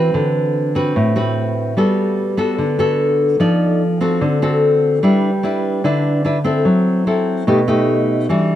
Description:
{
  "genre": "bossa nova",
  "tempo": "147 BPM",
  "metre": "4/4",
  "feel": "straight",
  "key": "G major from 5.0 s",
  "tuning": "A4 = 439 Hz",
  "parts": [
    { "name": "nylon-string guitar", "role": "solo", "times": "0.0-8.6 s", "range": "A2 to D5", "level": "-14 LUFS", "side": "equal", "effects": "none" }
  ],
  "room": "moderate plate reverb, RT60 3.5 s",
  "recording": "none",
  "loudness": "-14 LUFS",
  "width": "side -12 dB against mid",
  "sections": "0.0-5.0 A section; 5.0-8.6 A section",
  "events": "none",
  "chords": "0.1 D6; 1.8 Gmaj9; 3.4 F6; 4.2 D7; 5.0 G6; 6.7 F#m7b5; 7.5 B7b13"
}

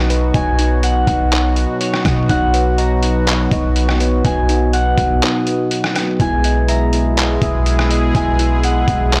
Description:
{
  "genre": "hip hop, atmospheric cloud-rap",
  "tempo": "123 BPM",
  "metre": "4/4",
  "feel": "half-time",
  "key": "B major",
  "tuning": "A4 = 440 Hz",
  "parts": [
    { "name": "concert harp", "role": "melody", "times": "0.0-9.2 s", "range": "C#5 to A#5", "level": "-24 LUFS", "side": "equal", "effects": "low-pass filter, tape echo" },
    { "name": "sweeping resonant pad", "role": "sustained chords", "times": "0.0-9.2 s", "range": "B2 to G#4", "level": "-22 LUFS", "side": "equal", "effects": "chorus" },
    { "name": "muted felt-like synth keys", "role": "arpeggios", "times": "0.0-9.2 s", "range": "D#4 to E5", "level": "-25 LUFS", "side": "equal", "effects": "chorus, low-pass filter, tape echo" },
    { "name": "clean 808-style bass", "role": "bass", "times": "0.0-9.2 s", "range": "B1 to B2", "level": "-19 LUFS", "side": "equal", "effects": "none" },
    { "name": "trip hop sampler-style drum kit", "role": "drums", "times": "0.1-9.2 s", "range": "handclaps, hi-hat, kick drum, rim click", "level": "-22 LUFS", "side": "equal", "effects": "overdrive" }
  ],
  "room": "little or no reverb",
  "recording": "blown-out, overdriven recording, overdrive",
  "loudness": "-16 LUFS",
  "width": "mono",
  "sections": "0.0-9.2 A section",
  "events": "break 5.2-6.2",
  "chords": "0.0 Bmaj7; 6.2 Emaj7/B"
}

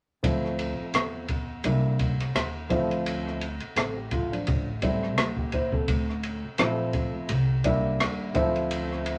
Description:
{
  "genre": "hip hop, jazz-hop",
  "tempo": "85 BPM",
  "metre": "4/4",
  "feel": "swing 57% on 16ths",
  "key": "D minor",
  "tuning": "A4 = 436 Hz",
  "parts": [
    { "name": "dark concert grand piano", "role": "accompaniment", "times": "0.2-9.2 s", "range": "F3 to C5", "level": "-31 LUFS", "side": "equal", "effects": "none" },
    { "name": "upright bass", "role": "bass", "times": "0.2-9.2 s", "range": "A1 to E2", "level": "-33 LUFS", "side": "equal", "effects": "none" },
    { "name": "open jazz drum kit", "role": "drums", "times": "0.2-9.2 s", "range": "hi-hat, kick drum, ride cymbal, rim click", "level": "-31 LUFS", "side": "equal", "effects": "none" }
  ],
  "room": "moderate small room reverb, RT60 0.5 s",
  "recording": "none",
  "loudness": "-27 LUFS",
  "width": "mono",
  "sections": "0.2-9.2 A section",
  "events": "none",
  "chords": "0.2 Dm9; 1.6 C9; 2.7 Dm9; 4.5 Am7; 5.9 Dm9; 7.3 C9; 8.4 Dm9"
}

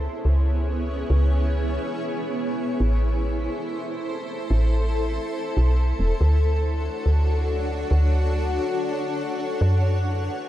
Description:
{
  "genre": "IDM",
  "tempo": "141 BPM",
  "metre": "4/4",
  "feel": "straight",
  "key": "unclear",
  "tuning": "A4 = 440 Hz",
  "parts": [
    { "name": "granular cloud pad", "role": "sustained chords", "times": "0.0-10.5 s", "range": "B3 to F#5", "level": "-27 LUFS", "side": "left 1 dB", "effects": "built-in reverb" },
    { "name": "woody FM bass", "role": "bass", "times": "0.0-10.3 s", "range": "E1 to F#2", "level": "-20 LUFS", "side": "equal", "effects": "tube saturation" }
  ],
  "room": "light reverb, digital ambience",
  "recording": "dark, warm production",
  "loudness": "-21 LUFS",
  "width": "side -13 dB against mid",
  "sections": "0.0-10.5 A section",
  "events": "none",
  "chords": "0.0 C#m7; 2.8 Am; 6.2 Dmaj7; 9.6 F#9sus4"
}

